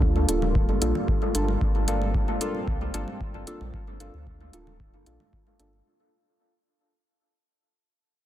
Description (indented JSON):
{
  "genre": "dub techno",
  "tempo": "113 BPM",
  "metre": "4/4",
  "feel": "straight",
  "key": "G minor",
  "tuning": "A4 = 440 Hz",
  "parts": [
    { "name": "dark analog pad", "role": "sustained chords", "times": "0.0-5.8 s", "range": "G3 to F4", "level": "-34 LUFS", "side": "left 1 dB", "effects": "chorus, sidechain pumping" },
    { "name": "warm sub bass", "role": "bass", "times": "0.0-5.8 s", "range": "D1 to D2", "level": "-27 LUFS", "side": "equal", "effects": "sidechain pumping" },
    { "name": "electronic kick drum", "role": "drums", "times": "0.0-5.4 s", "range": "none", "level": "-26 LUFS", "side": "equal", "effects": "none" },
    { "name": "congas", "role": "percussion", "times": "0.2-5.8 s", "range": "none", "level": "-36 LUFS", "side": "right 4 dB", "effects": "overdrive, sidechain pumping on perc, dub echo" },
    { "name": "deep mellow chord stab", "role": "stabs", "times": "0.3-5.7 s", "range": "Bb3 to A4", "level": "-30 LUFS", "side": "equal", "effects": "chorus, phaser, sidechain pumping, dub echo" },
    { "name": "electronic hi-hat", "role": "drums", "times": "0.3-5.7 s", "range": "none", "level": "-30 LUFS", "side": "equal", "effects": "none" }
  ],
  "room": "light reverb, digital ambience",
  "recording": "dense, heavily limited modern master",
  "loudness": "-23 LUFS",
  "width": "side -12 dB against mid",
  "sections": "0.0-5.9 A section",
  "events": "fade-out 0.0-5.9",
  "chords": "0.0 Gm7"
}